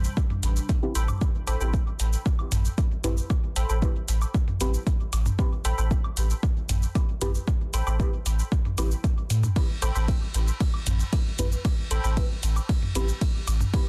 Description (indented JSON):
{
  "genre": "dub techno",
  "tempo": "115 BPM",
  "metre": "4/4",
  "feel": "straight",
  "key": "A minor",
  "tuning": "A4 = 440 Hz",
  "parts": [
    { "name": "warbly tape-like pad", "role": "sustained chords", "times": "0.0-1.2 s", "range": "C3 to D4", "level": "-45 LUFS", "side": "equal", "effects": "chorus, built-in reverb, sidechain pumping" },
    { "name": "soft dub sub bass", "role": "bass", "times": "0.0-13.6 s", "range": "A1 to A2", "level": "-27 LUFS", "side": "equal", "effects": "sidechain pumping" },
    { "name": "deep house drum kit", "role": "drums", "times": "0.0-13.8 s", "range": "hi-hat, ride cymbal, shaker", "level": "-37 LUFS", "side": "equal", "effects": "overdrive" },
    { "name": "electronic kick drum", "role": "drums", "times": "0.2-13.8 s", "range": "none", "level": "-26 LUFS", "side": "equal", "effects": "overdrive" },
    { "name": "electronic toms and woodblock", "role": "percussion", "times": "0.3-13.7 s", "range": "none", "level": "-34 LUFS", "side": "equal", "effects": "overdrive, sidechain pumping on toms, sidechain pumping on perc, dub echo" },
    { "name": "deep mellow chord stab", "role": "stabs", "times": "0.8-13.1 s", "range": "C4 to B4", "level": "-37 LUFS", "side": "equal", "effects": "chorus, phaser, sidechain pumping, dub echo" },
    { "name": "wavetable chord stab", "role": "riff", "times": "1.0-12.1 s", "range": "A4 to B5", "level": "-38 LUFS", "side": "equal", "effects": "cassette tape, sidechain pumping, dub echo" }
  ],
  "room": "digital ambience",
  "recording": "dense, heavily limited modern master",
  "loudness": "-26 LUFS",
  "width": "mono",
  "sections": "0.0-1.2 A section; 1.2-13.9 A section",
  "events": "none",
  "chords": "0.0 Am9"
}